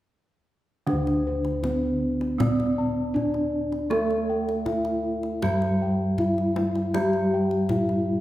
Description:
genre	Javanese gamelan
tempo	79 BPM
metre	4/4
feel	straight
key	D slendro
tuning	A4 = 440 Hz
part	gamelan-type bronze metallophone	melody	0.9-8.2 s	C4-45c to A4+25c	-27 LUFS	equal	none
part	gamelan-type bronze metallophone	accompaniment	0.9-8.2 s	D3 to C4-45c	-28 LUFS	right 1 dB	none
part	gamelan-type bossed gongs	arpeggios	0.9-8.1 s	C5-45c to A5+25c	-30 LUFS	left 1 dB	none
part	gamelan-type bossed gongs	bass	0.9-8.2 s	D2 to A4+25c	-29 LUFS	equal	none
part	kendang	percussion	0.9-8.0 s	none	-33 LUFS	left 1 dB	none
room	wet recital hall reverb, RT60 1.8 s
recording	heard from further back in the room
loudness	-22 LUFS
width	side -14 dB against mid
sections	0.9-8.2 A section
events	none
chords	none

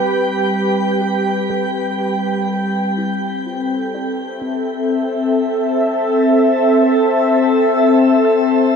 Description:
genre	ambient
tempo	62 BPM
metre	3/4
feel	straight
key	F lydian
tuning	A4 = 440 Hz
part	warm analog pad	sustained chords	0.0-8.8 s	C4 to G5	-14 LUFS	left 1 dB	chorus
part	analog drone	drone	0.0-3.1 s	G3 to C4	-23 LUFS	equal	chorus
part	soft round pluck	arpeggios	1.0-8.8 s	G3 to E6	-36 LUFS	right 2 dB	none
room	wet shimmer reverb, RT60 8.4 s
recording	none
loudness	-14 LUFS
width	side -6 dB against mid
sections	0.0-3.0 A section; 3.0-8.8 A section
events	none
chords	0.0 Am9; 3.0 Fmaj9

